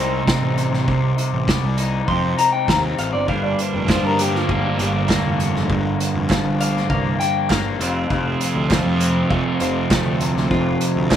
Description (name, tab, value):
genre	indie rock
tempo	100 BPM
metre	4/4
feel	straight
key	G minor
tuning	A4 = 440 Hz
part	electric guitar through a small old amp	melody	0.0-11.2 s	D4 to C6	-24 LUFS	left 3 dB	slapback echo
part	cranked stack guitar	riff	0.0-11.2 s	F2 to Eb4	-22 LUFS	right 4 dB	overdrive
part	raw garage guitar	riff	0.0-11.2 s	F2 to Eb4	-25 LUFS	left 8 dB	overdrive, spring reverb, slapback echo
part	fuzz picked electric bass	bass	0.0-11.1 s	F1 to G2	-24 LUFS	equal	overdrive
part	loose indie drum kit	drums	0.3-11.2 s	hi-hat, kick drum, snare drum	-23 LUFS	equal	none
part	group handclap	percussion	3.9-11.2 s	none	-31 LUFS	right 9 dB	none
room	little or no reverb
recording	none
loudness	-17 LUFS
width	side -10 dB against mid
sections	0.0-11.2 A section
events	clean electric guitar solo 0.0-11.2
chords	0.0 Cm; 3.3 Gm7; 7.8 F